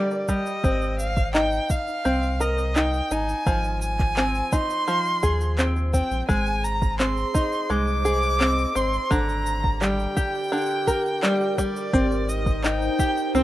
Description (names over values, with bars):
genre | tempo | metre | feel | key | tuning
folktronica | 85 BPM | 4/4 | straight | unclear | A4 = 440 Hz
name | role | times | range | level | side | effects
warm violin | melody | 0.0-13.4 s | D5 to D6 | -27 LUFS | right 1 dB | tape echo
open-back banjo | arpeggios | 0.0-13.4 s | D3 to Bb4 | -25 LUFS | left 1 dB | low-pass filter, tape echo
electronic shaker and handclaps | drums | 0.1-13.4 s | none | -30 LUFS | equal | none
electronic kick drum | drums | 0.3-13.1 s | none | -24 LUFS | equal | none
warm sub bass | bass | 0.6-13.4 s | Ab1 to Eb2 | -26 LUFS | equal | none
warbly tape-like pad | sustained chords | 7.0-13.4 s | Eb4 to Eb5 | -30 LUFS | equal | chorus, built-in reverb
room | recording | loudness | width
light reverb | rough home demo mix, lossy compression artefacts | -21 LUFS | side -15 dB against mid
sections
0.0-13.4 A section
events
none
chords
0.0 Gm; 0.6 Cm7/Ab; 3.5 Fm7/Ab; 6.3 Ab; 9.1 Gm/Ab; 11.9 Cm7/Ab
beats
| 0.64 1.35 2.05 2.76 | 3.46 4.17 4.88 5.58 | 6.29 6.99 7.70 8.40 | 9.11 9.82 10.52 11.23 | 11.94 12.64 13.35